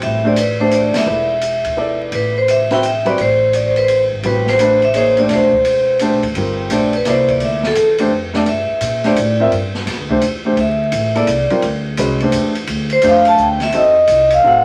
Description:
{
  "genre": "modal jazz",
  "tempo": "170 BPM",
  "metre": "3/4",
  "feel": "swing 65% on 8ths",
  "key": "A dorian, G dorian from 6.4 s",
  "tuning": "A4 = 440 Hz",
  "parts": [
    { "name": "vibraphone with medium hard mallets", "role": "melody", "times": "0.0-14.6 s", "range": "A4 to A5", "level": "-16 LUFS", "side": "equal", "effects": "none" },
    { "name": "warm concert grand piano", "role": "accompaniment", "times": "0.0-14.6 s", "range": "G3 to E5", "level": "-20 LUFS", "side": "equal", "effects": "none" },
    { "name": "upright bass", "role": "bass", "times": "0.0-14.6 s", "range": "E1 to Bb2", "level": "-26 LUFS", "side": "equal", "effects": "none" },
    { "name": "open jazz drum kit", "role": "drums", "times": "0.0-14.4 s", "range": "hi-hat, kick drum, ride cymbal, snare drum", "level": "-27 LUFS", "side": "equal", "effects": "none" }
  ],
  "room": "moderate small room reverb, RT60 0.5 s",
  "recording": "vinyl crackle",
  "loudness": "-15 LUFS",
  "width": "mono",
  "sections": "0.0-6.4 A section; 6.4-14.6 B section",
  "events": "band accent 0.9; vibraphone solo 6.4-14.6",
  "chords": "0.0 Am11; 6.4 G9sus4; 13.7 F7b9"
}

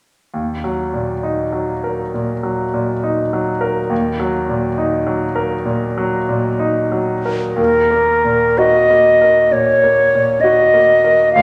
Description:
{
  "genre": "classical, romantic duo for flute and grand piano",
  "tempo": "65 BPM",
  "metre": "4/4",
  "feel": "uneven beats, rubato",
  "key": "Eb minor",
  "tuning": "A4 = 440 Hz",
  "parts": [
    { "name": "bright grand piano", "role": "accompaniment", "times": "0.3-11.4 s", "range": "D2 to Bb4", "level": "-20 LUFS", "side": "equal", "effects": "none" },
    { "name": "bright silver concert flute", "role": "melody", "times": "7.6-11.4 s", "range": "Bb4 to F5", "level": "-13 LUFS", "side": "equal", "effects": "none" }
  ],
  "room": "wet recital hall reverb, RT60 1.4 s",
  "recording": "none",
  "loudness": "-16 LUFS",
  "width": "mono",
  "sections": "0.3-7.6 A section; 7.6-11.4 B section",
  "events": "none",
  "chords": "0.3 Ebm"
}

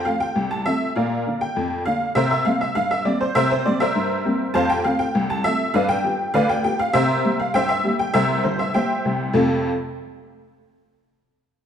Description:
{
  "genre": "ragtime piano",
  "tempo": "100 BPM",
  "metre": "2/4",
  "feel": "straight",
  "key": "F major",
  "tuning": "A4 = 442 Hz",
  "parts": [
    { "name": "honky-tonk upright piano", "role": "solo", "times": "0.0-9.7 s", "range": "G1 to A5", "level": "-18 LUFS", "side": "equal", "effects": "none" }
  ],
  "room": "wet echo chamber reverb, RT60 1.9 s",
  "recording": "heard from further back in the room",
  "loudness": "-18 LUFS",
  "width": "side -8 dB against mid",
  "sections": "0.0-9.3 A section; 9.3-10.5 B section",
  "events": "none",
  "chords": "0.0 F; 1.0 Bb; 2.2 C7; 4.5 F; 5.7 G7; 6.9 C7; 9.3 F"
}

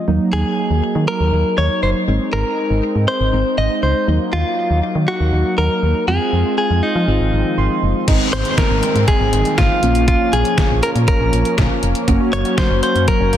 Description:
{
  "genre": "synth-pop",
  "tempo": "120 BPM",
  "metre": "4/4",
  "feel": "straight",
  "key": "Eb dorian",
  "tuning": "A4 = 440 Hz",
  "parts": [
    { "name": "muted felt-like synth keys", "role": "accompaniment", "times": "0.0-13.4 s", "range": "Gb3 to C6", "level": "-22 LUFS", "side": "right 1 dB", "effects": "chorus" },
    { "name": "brassy analog pad", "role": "sustained chords", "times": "0.0-13.4 s", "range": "Eb3 to F4", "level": "-24 LUFS", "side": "equal", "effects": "chorus" },
    { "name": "solid FM bass", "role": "bass", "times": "0.1-13.4 s", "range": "F1 to F3", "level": "-18 LUFS", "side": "equal", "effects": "none" },
    { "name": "direct-recorded clean electric guitar", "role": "melody", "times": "0.3-13.4 s", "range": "Eb4 to Eb5", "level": "-19 LUFS", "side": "equal", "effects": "spring reverb, ping-pong delay" },
    { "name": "detuned 8-bit digital drum machine", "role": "drums", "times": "8.1-13.4 s", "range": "crash cymbal, hi-hat, kick drum, snare drum", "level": "-18 LUFS", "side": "equal", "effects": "none" },
    { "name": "downlifter", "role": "sound effects", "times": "8.1-12.1 s", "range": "none", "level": "-27 LUFS", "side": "equal", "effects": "none" },
    { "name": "warbly dusty pluck", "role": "arpeggios", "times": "12.1-13.4 s", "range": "Gb3 to Gb4", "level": "-26 LUFS", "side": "left 4 dB", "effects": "chorus, ping-pong delay" }
  ],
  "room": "light reverb",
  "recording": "dense, heavily limited modern master",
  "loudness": "-14 LUFS",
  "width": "side -10 dB against mid",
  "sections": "0.0-8.1 A section; 8.1-13.4 B section",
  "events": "synth keys fill 7.3-8.1",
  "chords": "0.1 Ebm; 2.1 Ab; 4.1 Ebm; 6.1 Fm; 7.1 Ab6; 8.1 Ab; 9.8 Bbm; 12.1 Gb"
}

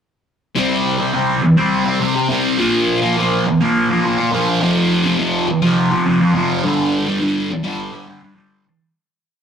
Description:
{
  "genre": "rock",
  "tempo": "208 BPM (eighths)",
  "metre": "7/8",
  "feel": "straight",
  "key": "G minor",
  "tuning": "A4 = 440 Hz",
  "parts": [
    { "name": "thick fuzz guitar", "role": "solo", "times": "0.6-8.6 s", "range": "F2 to C4", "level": "-14 LUFS", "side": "equal", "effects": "distortion, phaser" }
  ],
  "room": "wet stone room reverb, RT60 1.0 s",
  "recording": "rough rehearsal-room recording, warm saturation",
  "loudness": "-14 LUFS",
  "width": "side -7 dB against mid",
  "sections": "0.5-8.6 verse",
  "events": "fade-out 6.6-8.6",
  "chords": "0.5 C5; 2.6 Bb5; 4.6 F5; 6.6 G5"
}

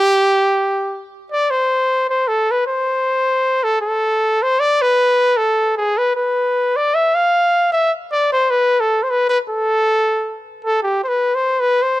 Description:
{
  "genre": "mexican folk",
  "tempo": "154 BPM",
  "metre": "3/4",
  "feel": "swing 54% on 8ths",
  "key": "A harmonic minor",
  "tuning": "A4 = 440 Hz",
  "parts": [
    { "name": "bright trumpet", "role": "solo", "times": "0.0-12.0 s", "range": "G4 to F5", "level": "-14 LUFS", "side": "equal", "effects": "none" }
  ],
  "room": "small room ambience",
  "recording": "dry, close 1970s-style studio recording",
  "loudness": "-14 LUFS",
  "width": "side -16 dB against mid",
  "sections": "0.0-1.5 A section; 1.5-10.8 B section; 10.8-12.0 C section",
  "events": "none",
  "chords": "none"
}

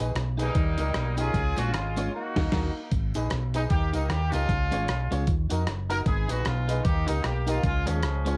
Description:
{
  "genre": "ska",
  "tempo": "152 BPM",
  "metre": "4/4",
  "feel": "swing 59% on 8ths",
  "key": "G# dorian",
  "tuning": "A4 = 444 Hz",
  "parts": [
    { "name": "electric guitar at the edge of break-up", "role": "accompaniment", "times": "0.0-8.4 s", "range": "G#3 to B4", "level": "-37 LUFS", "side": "equal", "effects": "slapback echo" },
    { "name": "warm upright piano", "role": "stabs", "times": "0.0-8.4 s", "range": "C#4 to D#5", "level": "-39 LUFS", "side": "equal", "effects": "tube saturation" },
    { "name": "fingered electric bass", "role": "bass", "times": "0.0-8.4 s", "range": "F#1 to E#2", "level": "-30 LUFS", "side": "equal", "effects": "none" },
    { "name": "dusty soul sampler-style drum kit", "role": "drums", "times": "0.0-8.3 s", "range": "crash cymbal, hi-hat, kick drum, rim click, snare drum", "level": "-31 LUFS", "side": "equal", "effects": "none" },
    { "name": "clear horn section", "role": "melody", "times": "0.4-8.4 s", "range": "E#3 to A#4", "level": "-33 LUFS", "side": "equal", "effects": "none" },
    { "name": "tambourine", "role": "percussion", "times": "0.4-8.3 s", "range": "none", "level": "-52 LUFS", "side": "equal", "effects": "none" }
  ],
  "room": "digital ambience",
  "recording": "none",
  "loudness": "-27 LUFS",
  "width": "mono",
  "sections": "0.0-2.9 A section; 2.9-8.4 A section",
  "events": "band accent 2.1-2.9",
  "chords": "0.0 G#m; 0.6 D#; 1.3 C#; 2.1 D#m; 2.9 G#m; 3.7 D#; 4.5 C#; 5.3 D#m; 6.1 G#m; 6.9 D#; 7.6 C#"
}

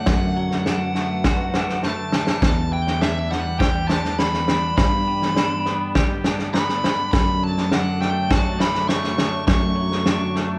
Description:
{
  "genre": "post-rock",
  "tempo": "102 BPM",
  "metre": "4/4",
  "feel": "straight",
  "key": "unclear",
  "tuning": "A4 = 440 Hz",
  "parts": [
    { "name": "bluesy overdriven lead guitar", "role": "melody", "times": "0.0-10.6 s", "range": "E5 to C#6", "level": "-28 LUFS", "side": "equal", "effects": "distortion" },
    { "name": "ethereal airy pad", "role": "sustained chords", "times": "0.0-10.6 s", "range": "D3 to D5", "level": "-34 LUFS", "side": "equal", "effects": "ensemble chorus, built-in reverb" },
    { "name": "twangy electric guitar", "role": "arpeggios", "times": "0.0-10.6 s", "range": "E2 to G4", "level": "-32 LUFS", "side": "equal", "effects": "none" },
    { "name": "picked electric bass", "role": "bass", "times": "0.0-10.6 s", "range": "E2 to G2", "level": "-28 LUFS", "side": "equal", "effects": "none" },
    { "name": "loose indie drum kit", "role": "drums", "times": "0.1-10.4 s", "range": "kick drum, snare drum", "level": "-24 LUFS", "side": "equal", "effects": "none" }
  ],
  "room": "moderate large studio reverb, RT60 1.1 s",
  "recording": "band playing live in one room, vinyl crackle",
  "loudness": "-21 LUFS",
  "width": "mono",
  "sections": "0.0-10.6 A section",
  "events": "drum fill 1.8-2.4",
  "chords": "0.0 D/F#; 2.4 Em7; 4.8 G; 7.1 Dmaj7/F#"
}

